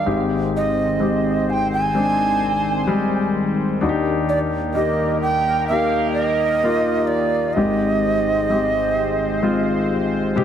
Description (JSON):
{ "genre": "pop ballad", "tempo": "64 BPM", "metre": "4/4", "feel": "straight", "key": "unclear", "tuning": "A4 = 439 Hz", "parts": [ { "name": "breathy bright long shakuhachi", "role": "melody", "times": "0.0-10.4 s", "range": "D5 to Ab5", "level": "-21 LUFS", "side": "right 4 dB", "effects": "none" }, { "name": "warm concert grand piano", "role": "accompaniment", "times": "0.0-10.4 s", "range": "Ab1 to G4", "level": "-20 LUFS", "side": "left 3 dB", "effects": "none" }, { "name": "sweeping resonant pad", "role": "sustained chords", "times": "0.0-10.4 s", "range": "Eb3 to C5", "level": "-26 LUFS", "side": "right 1 dB", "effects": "chorus" }, { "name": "toms", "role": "drums", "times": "10.4 s", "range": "none", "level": "-23 LUFS", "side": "right 2 dB", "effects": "none" } ], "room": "light reverb, studio reverb", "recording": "none", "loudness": "-17 LUFS", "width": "side -9 dB against mid", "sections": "0.0-10.4 A section", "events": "none", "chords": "0.1 Abmaj7; 3.8 Ebmaj7; 7.6 Abmaj7", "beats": "| 0.06 1.00 1.94 2.87 | 3.81 4.75 5.68 6.62 | 7.56 8.50 9.44 10.37" }